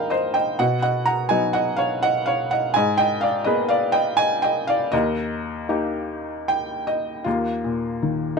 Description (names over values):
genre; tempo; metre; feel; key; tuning
classical, lyrical solo piano; 76-86 BPM; 3/4; rubato; unclear; A4 = 440 Hz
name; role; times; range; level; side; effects
felt-muted upright piano; solo; 0.0-8.4 s; Eb2 to Bb5; -20 LUFS; equal; none
room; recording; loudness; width
light reverb; none; -20 LUFS; side -4 dB against mid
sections
0.0-7.3 A section; 7.3-8.4 B section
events
felt piano fill 6.1-7.3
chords
0.0 Ebsus2; 0.6 B; 2.8 Abmadd9; 4.9 Eb; 7.3 Ebsus2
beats
| 0.59 1.30 2.02 | 2.75 3.46 4.19 | 4.93 5.69 6.48 | 7.26 8.03